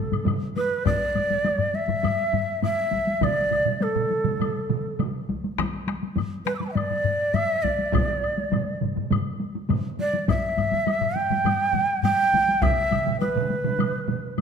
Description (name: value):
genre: japanese traditional, taiko drum ensemble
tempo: 102 BPM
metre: 4/4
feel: straight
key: A suspended pentatonic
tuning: A4 = 439 Hz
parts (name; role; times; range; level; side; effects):
- breathy shakuhachi; melody; 0.0-14.3 s; A4 to E6; -24 LUFS; right 1 dB; none
- taiko ensemble; percussion; 0.1-14.4 s; none; -29 LUFS; left 1 dB; none
- taiko ensemble; percussion; 0.1-12.2 s; none; -29 LUFS; left 6 dB; none
- taiko ensemble; percussion; 0.1-14.4 s; none; -29 LUFS; right 6 dB; none
- woodblock; percussion; 0.1-14.4 s; none; -38 LUFS; left 8 dB; none
- taiko ensemble; percussion; 0.9-12.8 s; none; -29 LUFS; equal; none
room: wet recital hall reverb, RT60 1.8 s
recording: none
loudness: -22 LUFS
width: side -6 dB against mid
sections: 0.9-14.4 A section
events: none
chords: none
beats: 0.27 | 0.86 1.45 2.04 2.63 | 3.23 3.82 4.41 5.00 | 5.59 6.17 6.76 7.35 | 7.94 8.53 9.12 9.70 | 10.29 10.87 11.46 12.04 | 12.63 13.21 13.80 14.38